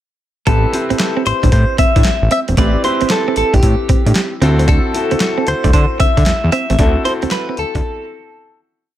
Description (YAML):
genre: R&B, new jack swing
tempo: 114 BPM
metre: 4/4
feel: swing 66% on 16ths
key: A dorian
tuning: A4 = 440 Hz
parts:
  - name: direct-recorded clean electric guitar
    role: melody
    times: 0.5-8.6 s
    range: G4 to E5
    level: -18 LUFS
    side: left 1 dB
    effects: phaser
  - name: clear grand piano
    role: accompaniment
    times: 0.5-8.9 s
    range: C4 to B4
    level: -22 LUFS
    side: left 1 dB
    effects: none
  - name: direct-recorded clean electric guitar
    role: riff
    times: 0.5-7.8 s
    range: A3 to D4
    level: -22 LUFS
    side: right 6 dB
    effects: wide subtle chorus
  - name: fat analog bass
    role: bass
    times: 0.5-7.8 s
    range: E1 to D3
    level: -15 LUFS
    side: equal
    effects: none
  - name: boom bap sampler-style drum kit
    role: drums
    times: 0.5-7.8 s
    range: handclaps, hi-hat, kick drum, snare drum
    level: -16 LUFS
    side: equal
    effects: none
room: little or no reverb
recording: none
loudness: -12 LUFS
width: side -12 dB against mid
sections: 0.5-8.9 verse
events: fade-out 6.8-8.9; break 7.8-8.9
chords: 0.5 Am7; 4.4 D9